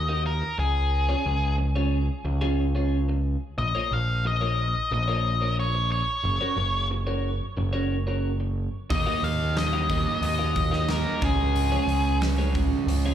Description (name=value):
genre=quiet-loud alternative rock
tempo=90 BPM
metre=4/4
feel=straight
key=Db major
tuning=A4 = 440 Hz
part: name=octave-fuzz lead guitar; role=melody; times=0.0-12.2 s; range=Ab4 to F5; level=-28 LUFS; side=left 3 dB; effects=distortion, slapback echo, tape echo
part: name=growling picked electric bass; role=bass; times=0.0-13.1 s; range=Gb1 to Eb2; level=-25 LUFS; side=equal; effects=overdrive
part: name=twelve-string electric guitar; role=arpeggios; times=0.1-13.1 s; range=Ab3 to F5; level=-32 LUFS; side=right 1 dB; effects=slapback echo
part: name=overdriven electric guitar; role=riff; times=8.9-13.1 s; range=Db3 to Eb4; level=-29 LUFS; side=right 9 dB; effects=slapback echo
part: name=huge arena drum kit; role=drums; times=8.9-13.0 s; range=hi-hat, kick drum, snare drum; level=-30 LUFS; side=equal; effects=none
room=small room ambience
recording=live gig heard through the venue's PA, club reverb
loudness=-23 LUFS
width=side -10 dB against mid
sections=0.0-13.1 A section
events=none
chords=0.0 Ebmadd9; 0.6 Db; 3.6 Bbm; 6.2 Gb; 8.9 Ebmadd9; 11.2 Db